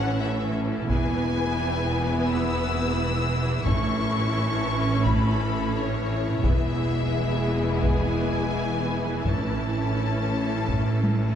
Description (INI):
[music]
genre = cinematic, epic orchestral film score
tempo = 86 BPM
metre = 4/4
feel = straight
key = E major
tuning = A4 = 440 Hz
[part]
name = clear symphonic violin section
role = melody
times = 0.0-11.4 s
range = C#5 to E6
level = -31 LUFS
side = left 4 dB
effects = none
[part]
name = clear symphonic violin section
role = second line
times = 0.0-11.4 s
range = E4 to B4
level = -34 LUFS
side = left 2 dB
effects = none
[part]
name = clear symphonic viola section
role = accompaniment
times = 0.0-11.4 s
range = E3 to C#4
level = -30 LUFS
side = right 2 dB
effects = none
[part]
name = mellow French horn section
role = sustained chords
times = 0.0-11.4 s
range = G#3 to E4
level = -31 LUFS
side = left 5 dB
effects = none
[part]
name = rich symphonic cello section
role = bass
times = 0.0-11.4 s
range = E2 to A2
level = -30 LUFS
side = right 2 dB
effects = none
[part]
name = warm symphonic double bass section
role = bass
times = 0.0-11.4 s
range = E1 to A1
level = -28 LUFS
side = right 2 dB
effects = none
[part]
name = taiko ensemble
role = drums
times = 0.9-11.4 s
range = none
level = -28 LUFS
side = equal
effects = none
[part]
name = reverse cymbal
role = sound effects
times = 11.2-11.4 s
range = none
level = -51 LUFS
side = equal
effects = none
[sound]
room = moderate concert hall reverb, RT60 2.3 s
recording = dark, warm production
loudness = -22 LUFS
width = side -9 dB against mid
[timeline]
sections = 0.0-11.4 A section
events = drum fill 11.0-11.4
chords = 0.0 A; 0.9 E; 3.7 A; 6.4 E; 9.3 A